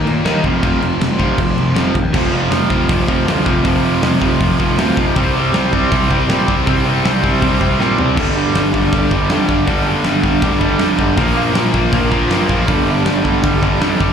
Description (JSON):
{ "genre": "punk rock", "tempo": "159 BPM", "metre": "4/4", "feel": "straight", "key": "unclear", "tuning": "A4 = 440 Hz", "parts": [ { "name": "crunchy overdriven guitar", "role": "riff", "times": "0.0-14.1 s", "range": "F2 to Eb4", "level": "-20 LUFS", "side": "left 11 dB", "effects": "none" }, { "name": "raw garage guitar", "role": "riff", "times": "0.0-14.1 s", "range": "F2 to Eb4", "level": "-19 LUFS", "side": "right 9 dB", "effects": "overdrive" }, { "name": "tight distorted guitar", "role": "riff", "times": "0.0-14.1 s", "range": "F2 to Eb4", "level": "-20 LUFS", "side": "equal", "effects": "distortion" }, { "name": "fuzz picked electric bass", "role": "bass", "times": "0.0-14.1 s", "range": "F1 to Bb2", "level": "-19 LUFS", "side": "equal", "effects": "overdrive" }, { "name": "big rock drum kit", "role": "drums", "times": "0.1-14.1 s", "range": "crash cymbal, hi-hat, kick drum, snare drum, toms", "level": "-19 LUFS", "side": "equal", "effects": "none" } ], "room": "little or no reverb", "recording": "live gig heard through the venue's PA, club reverb", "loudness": "-12 LUFS", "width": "side -7 dB against mid", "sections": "0.0-2.1 A section; 2.1-14.1 B section", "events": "drum fill 7.8-8.2", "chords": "0.4 F5; 5.2 C5; 8.2 G5; 11.2 Bb5; 12.7 G5", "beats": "0.25 | 0.63 1.01 1.39 1.76 | 2.14 2.52 2.90 3.27 | 3.65 4.03 4.41 4.79 | 5.16 5.54 5.92 6.29 | 6.67 7.04 7.42 7.80 | 8.17 8.55 8.92 9.30 | 9.67 10.05 10.43 10.80 | 11.18 11.55 11.93 12.30 | 12.68 13.06 13.43 13.81" }